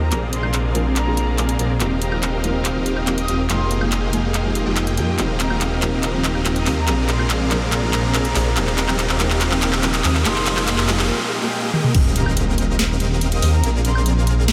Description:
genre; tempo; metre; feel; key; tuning
future bass; 142 BPM; 4/4; half-time; Eb major; A4 = 443 Hz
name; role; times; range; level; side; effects
breathy flute-like synth lead; melody; 0.0-14.5 s; Bb5 to Eb6; -33 LUFS; equal; lush chorus, sidechain pumping, delay
warm studio string section; sustained chords; 0.0-11.1 s; Eb3 to G5; -35 LUFS; equal; none
dense compressed supersaw; riff; 0.0-14.5 s; Bb3 to G5; -26 LUFS; equal; sidechain pumping, low-pass filter, delay
detuned saw bass; bass; 0.0-14.5 s; Eb1 to F2; -23 LUFS; equal; chorus, sidechain pumping
riser and impact; sound effects; 0.0-13.6 s; none; -34 LUFS; equal; none
felt-muted upright piano; accompaniment; 0.1-10.9 s; F3 to Bb4; -29 LUFS; equal; sidechain pumping, delay
trap drum kit; drums; 0.1-14.5 s; crash cymbal, handclaps, hi-hat, snare drum, toms, woodblock; -26 LUFS; equal; none
electronic kick drum; drums; 11.9-12.0 s; none; -18 LUFS; equal; none
room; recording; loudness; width
wet huge ambient reverb, RT60 7.7 s; dreamy mix soaked in reverb; -19 LUFS; mono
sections
0.0-11.9 A section; 11.9-14.5 B section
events
build-up 0.0-11.9; drum fill 0.0-11.1, 11.7; drop 11.9-14.5; impact 11.9-13.6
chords
0.1 Bb9; 1.8 Eb69; 3.5 Fm11; 5.2 Eb69; 6.9 Bb9; 8.6 Eb69; 10.3 Fm11; 11.9 Eb69; 13.6 Bb9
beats
| 0.12 0.54 0.96 1.38 | 1.81 2.23 2.65 3.07 | 3.50 3.92 4.34 4.76 | 5.19 5.61 6.03 6.46 | 6.88 7.30 7.72 8.14 | 8.57 8.99 9.41 9.84 | 10.26 10.68 11.10 11.53 | 11.95 12.37 12.79 13.21 | 13.64 14.06 14.48

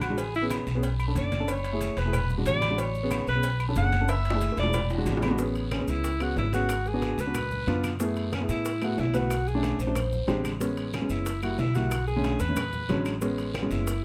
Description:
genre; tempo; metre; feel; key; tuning
Afro-Cuban jazz; 184 BPM; 4/4; straight; A major; A4 = 440 Hz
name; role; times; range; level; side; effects
mellow alto saxophone; melody; 0.0-14.0 s; C#4 to F#5; -33 LUFS; equal; plate reverb
upright bass; bass; 0.0-14.0 s; E1 to A2; -32 LUFS; equal; none
agogo bells and timbales; percussion; 0.0-14.0 s; none; -40 LUFS; equal; none
claves; percussion; 0.0-13.7 s; none; -43 LUFS; equal; none
congas; percussion; 0.0-14.0 s; none; -40 LUFS; equal; none
cowbell and bongos; percussion; 0.0-14.0 s; none; -40 LUFS; equal; none
guiro; percussion; 0.0-14.0 s; none; -47 LUFS; equal; none
maracas; percussion; 0.0-14.0 s; none; -49 LUFS; equal; none
dark baby grand piano; accompaniment; 0.1-13.9 s; D3 to C5; -33 LUFS; equal; none
room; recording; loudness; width
light reverb; close, detailed microphones; -27 LUFS; mono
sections
0.0-5.4 A section; 5.4-14.0 B section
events
alto saxophone solo 0.0-5.4; drum fill 4.1-5.4; grand piano fill 10.1-10.6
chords
0.2 Amaj7; 0.8 Bm7; 1.5 F#m7; 2.1 E7; 2.8 Amaj7; 3.4 Bm7; 4.1 F#m7; 4.7 E7; 5.4 Amaj7; 6.7 G#m7b5; 7.3 C#7b9; 8.0 F#m11; 9.3 Bm7; 10.0 Bb13; 10.6 Amaj9; 11.3 F#7b9; 11.9 Bm9; 12.6 E13; 13.2 Amaj7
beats
| 0.18 0.50 0.83 1.16 | 1.48 1.81 2.13 2.46 | 2.79 3.11 3.44 3.76 | 4.09 4.41 4.74 5.07 | 5.39 5.72 6.04 6.37 | 6.70 7.02 7.35 7.67 | 8.00 8.33 8.65 8.98 | 9.30 9.63 9.96 10.28 | 10.61 10.94 11.26 11.59 | 11.91 12.24 12.57 12.89 | 13.22 13.55 13.87

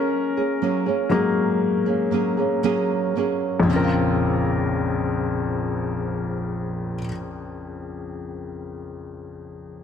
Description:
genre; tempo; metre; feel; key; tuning
pop; 56-63 BPM; 4/4; straight; Bb minor; A4 = 440 Hz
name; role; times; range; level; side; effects
felt-muted upright piano; accompaniment; 0.0-9.8 s; Bb1 to Bb4; -23 LUFS; left 4 dB; none
nylon-string guitar; arpeggios; 0.0-7.3 s; Bb2 to Ab4; -24 LUFS; right 5 dB; none
room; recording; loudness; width
moderate concert hall reverb, RT60 2.1 s; dense, heavily limited modern master; -20 LUFS; side -8 dB against mid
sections
0.0-3.7 A section; 3.7-8.0 B section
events
slowing down 0.0-3.7; felt piano solo 0.0-3.7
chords
0.0 Gbadd9; 3.7 Bbmadd9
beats
0.62 1.60 2.62 | 3.68 4.76 5.84 6.91

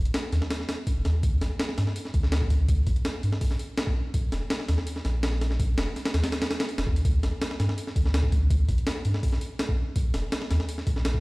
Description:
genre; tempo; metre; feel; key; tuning
drum and bass, jungle; 165 BPM; 4/4; straight; unclear; A4 = 442 Hz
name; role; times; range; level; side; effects
soft dub sub bass; bass; 0.0-11.2 s; F1 to G2; -25 LUFS; equal; none
breakbeat sampler-style drum kit; drums; 0.1-11.2 s; hi-hat, kick drum, snare drum; -26 LUFS; equal; studio reverb
room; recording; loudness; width
little or no reverb; played on a big sound system in a bare room, stone room reverb; -24 LUFS; side -24 dB against mid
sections
0.0-11.2 A section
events
none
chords
none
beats
0.14 0.51 0.87 | 1.23 1.60 1.96 2.32 | 2.69 3.05 3.41 3.78 | 4.14 4.50 4.87 5.23 | 5.60 5.96 6.32 6.69 | 7.05 7.41 7.78 8.14 | 8.51 8.87 9.23 9.60 | 9.96 10.32 10.69 11.05

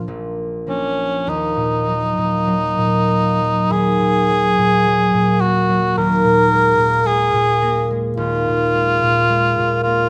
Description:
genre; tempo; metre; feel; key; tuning
classical, romantic duo for cor anglais and harp; 46-55 BPM; 4/4; rubato; Eb minor; A4 = 438 Hz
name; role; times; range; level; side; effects
warm cor anglais; melody; 0.0-10.1 s; Db4 to Bb4; -19 LUFS; equal; none
concert harp; accompaniment; 0.0-10.1 s; Bb1 to D4; -21 LUFS; equal; none
room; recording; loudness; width
moderate scoring stage reverb, RT60 1.5 s; close, detailed microphones; -17 LUFS; mono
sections
0.0-1.3 A section; 1.3-10.1 B section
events
none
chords
0.0 Bb; 1.3 Ebm; 6.0 Bb5/Eb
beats
0.08 | 1.28 2.46 3.71 4.86 | 5.97 7.07 8.18 9.28

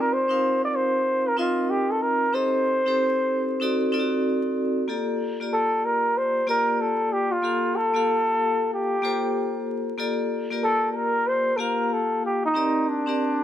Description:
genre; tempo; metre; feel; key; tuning
hip hop; 94 BPM; 4/4; swing 64% on 16ths; G minor; A4 = 444 Hz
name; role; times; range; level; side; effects
breathy flugelhorn; melody; 0.0-13.4 s; D4 to D5; -22 LUFS; equal; none
vibraphone with hard mallets; accompaniment; 0.0-13.4 s; Bb3 to F5; -26 LUFS; left 1 dB; none
room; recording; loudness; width
light reverb; vinyl crackle; -21 LUFS; side -11 dB against mid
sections
0.0-10.0 A section; 10.0-13.4 A section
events
none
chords
0.0 Cm11; 2.3 Am7b5; 3.6 D7b9; 4.9 Gm9; 12.5 Cm9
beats
0.42 1.05 1.69 | 2.33 2.97 3.61 4.25 | 4.88 5.52 6.16 6.80 | 7.44 8.08 8.71 9.35 | 9.99 10.63 11.27 11.91 | 12.54 13.18

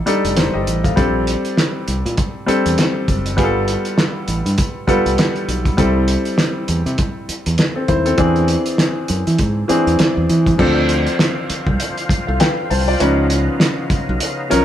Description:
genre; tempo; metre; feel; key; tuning
lush 1970s-style soul; 100 BPM; 4/4; swing 58% on 16ths; unclear; A4 = 440 Hz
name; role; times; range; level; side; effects
clear concert grand piano; accompaniment; 0.0-14.6 s; E3 to A5; -18 LUFS; left 1 dB; none
modern bright fingered electric bass; bass; 0.1-14.6 s; F1 to E3; -19 LUFS; right 1 dB; none
cloth-damped thuddy drum kit; drums; 0.1-14.6 s; crash cymbal, hi-hat, kick drum, snare drum; -18 LUFS; right 1 dB; none
overdriven tonewheel organ; sustained chords; 10.6-14.6 s; C#3 to F4; -26 LUFS; equal; slow rotary speaker, chorus vibrato
room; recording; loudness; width
moderate studio reverb, RT60 0.6 s; band playing live in one room; -14 LUFS; side -11 dB against mid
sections
0.0-10.6 A section; 10.6-14.6 B section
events
none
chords
0.0 F13; 1.0 Bbmaj13; 3.4 G9; 5.8 C6; 8.2 E7b13; 10.6 Dm7; 13.0 C#9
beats
0.37 | 0.97 1.57 2.17 2.77 | 3.38 3.98 4.58 5.18 | 5.78 6.38 6.99 7.59 | 8.19 8.79 9.39 9.99 | 10.59 11.20 11.80 12.40 | 13.00 13.60 14.21

